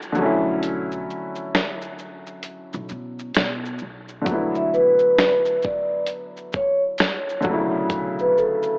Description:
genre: lo-fi hip hop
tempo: 66 BPM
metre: 4/4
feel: swing 63% on 16ths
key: B minor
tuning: A4 = 440 Hz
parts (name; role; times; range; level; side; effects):
- felt-muted upright piano; accompaniment; 0.0-8.8 s; C#3 to E4; -24 LUFS; left 1 dB; low-pass filter, cassette tape
- dusty soul sampler-style drum kit; drums; 0.0-8.8 s; hi-hat, kick drum, shaker, snare drum; -23 LUFS; equal; cassette tape
- upright bass; bass; 0.2-8.3 s; E1 to B2; -34 LUFS; equal; none
- vibraphone with soft mallets; melody; 4.6-8.8 s; A4 to E5; -19 LUFS; equal; low-pass filter, cassette tape, analog delay
room: moderate spring reverb, RT60 2.8 s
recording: home recording on cassette, AM radio sound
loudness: -19 LUFS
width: side -32 dB against mid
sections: 0.0-8.8 A section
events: break 0.0-4.3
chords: 0.2 Bm11; 4.3 E9sus4; 7.4 Bm11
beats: | 0.63 1.54 2.45 3.35 | 4.26 5.17 6.08 6.99 | 7.90

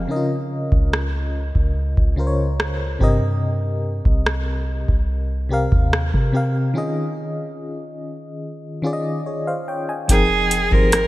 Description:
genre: contemporary R&B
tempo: 72 BPM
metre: 4/4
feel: straight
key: unclear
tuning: A4 = 440 Hz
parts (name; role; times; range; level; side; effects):
- FM electric piano with tremolo; accompaniment; 0.0-11.1 s; C3 to Ab5; -23 LUFS; left 1 dB; none
- soft 808-style bass; bass; 0.0-11.1 s; F1 to C3; -22 LUFS; equal; none
- booming analog drum machine; drums; 0.7-11.1 s; hi-hat, kick drum, rim click; -19 LUFS; equal; none
- clear viola; melody; 10.1-11.1 s; Ab4 to Bb4; -18 LUFS; right 2 dB; none
room: light reverb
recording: bright 1980s-style digital production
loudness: -18 LUFS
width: side -17 dB against mid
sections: 0.0-10.1 A section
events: break 6.8-10.1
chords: 0.1 Db6; 3.0 Cm7; 6.8 Eb7sus4; 10.1 Fm11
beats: | 0.09 0.93 1.76 2.59 | 3.43 4.26 5.09 5.93 | 6.76 7.59 8.43 9.26 | 10.09 10.93

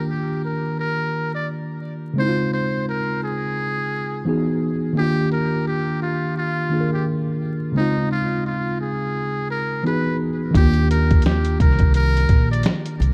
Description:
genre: lo-fi hip hop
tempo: 86 BPM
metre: 4/4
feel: swing 59% on 16ths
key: Eb major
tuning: A4 = 440 Hz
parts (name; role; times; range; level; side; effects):
- trumpet with metal mute; melody; 0.0-12.6 s; Eb4 to D5; -28 LUFS; equal; tape echo
- tine electric piano; accompaniment; 0.0-13.1 s; Db3 to Bb4; -25 LUFS; equal; none
- lo-fi sampler-style drum kit; drums; 10.5-13.1 s; finger snaps, hi-hat, kick drum, snare drum; -19 LUFS; equal; none
- upright bass; bass; 10.6-13.1 s; Bb1 to Eb2; -21 LUFS; equal; none
room: light reverb, studio reverb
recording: echo-heavy mix, vinyl crackle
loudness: -21 LUFS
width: mono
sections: 0.0-10.5 A section; 10.5-13.1 B section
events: none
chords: 0.0 Ebmaj7; 2.2 Dbmaj7; 4.3 Emaj7; 5.0 Ebmaj7; 7.8 Dbmaj7; 9.8 Emaj7; 10.5 Ebmaj7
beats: 0.08 0.78 1.47 | 2.17 2.87 3.57 4.26 | 4.96 5.66 6.36 7.05 | 7.75 8.45 9.15 9.85 | 10.54 11.24 11.94 12.64

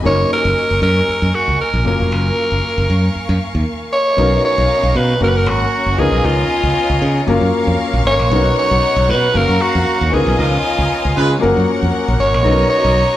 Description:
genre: disco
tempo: 116 BPM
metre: 4/4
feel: straight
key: unclear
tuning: A4 = 440 Hz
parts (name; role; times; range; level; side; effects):
- warm baby grand piano; accompaniment; 0.0-13.2 s; E3 to E#5; -20 LUFS; left 2 dB; none
- clear studio string section; sustained chords; 0.0-13.2 s; B3 to D#6; -26 LUFS; equal; none
- raspy alto saxophone; melody; 0.1-13.2 s; E#4 to C#5; -17 LUFS; right 1 dB; none
- modern bright fingered electric bass; bass; 0.1-13.0 s; E#1 to C#3; -17 LUFS; equal; none
- warm studio violin section; second line; 4.2-13.2 s; C#4 to A#5; -22 LUFS; left 3 dB; none
- warm horn section; stabs; 10.4-11.3 s; E#3 to B4; -20 LUFS; right 2 dB; none
room: wet large studio reverb, RT60 0.8 s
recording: band playing live in one room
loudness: -13 LUFS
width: side -13 dB against mid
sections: 0.0-4.2 A section; 4.2-13.2 B section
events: band accent 10.4-12.4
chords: 0.0 D#m7/F#; 1.9 F#maj7; 4.2 Bmaj9; 5.2 F#; 6.0 C#13; 7.3 F#maj7; 8.3 Bmaj9; 9.3 F#maj7; 10.1 C#13; 11.4 F#maj7; 12.4 Bmaj9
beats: | 0.05 0.56 1.08 1.60 | 2.11 2.63 3.15 3.67 | 4.18 4.70 5.21 5.73 | 6.25 6.76 7.28 7.80 | 8.31 8.83 9.35 9.86 | 10.38 10.89 11.41 11.93 | 12.44 12.96

